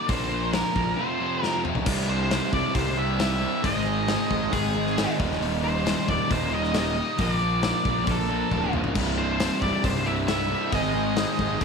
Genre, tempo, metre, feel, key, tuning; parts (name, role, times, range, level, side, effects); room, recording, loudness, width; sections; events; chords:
classic rock; 135 BPM; 4/4; straight; A4 = 440 Hz
octave-fuzz lead guitar; melody; 0.0-11.6 s; Ab4 to E5; -28 LUFS; equal; distortion, slapback echo
string machine, cellos; sustained chords; 0.0-11.6 s; F3 to D5; -38 LUFS; equal
distorted electric guitar; riff; 0.0-11.6 s; C2 to Bb4; -31 LUFS; left 13 dB; distortion
overdriven semi-hollow guitar; riff; 0.1-11.6 s; C2 to Bb3; -32 LUFS; equal
raw garage guitar; riff; 0.1-11.6 s; C2 to Bb4; -30 LUFS; right 14 dB; overdrive
fuzz fingered electric bass; bass; 0.1-11.6 s; C1 to C2; -30 LUFS; equal; overdrive
gated 80s drum kit; drums; 0.1-11.6 s; crash cymbal, hi-hat, kick drum, snare drum, toms; -29 LUFS; left 3 dB
light reverb; 1960s-style stereo with parts hard left and right; -22 LUFS; side -5 dB against mid
0.0-1.9 A section; 1.9-11.6 A section
drum fill 1.4-1.9, 8.5-9.0
0.1 Bb; 1.0 F; 1.9 C; 3.6 Ab; 5.2 Eb; 7.2 Bb; 9.0 C; 10.7 Ab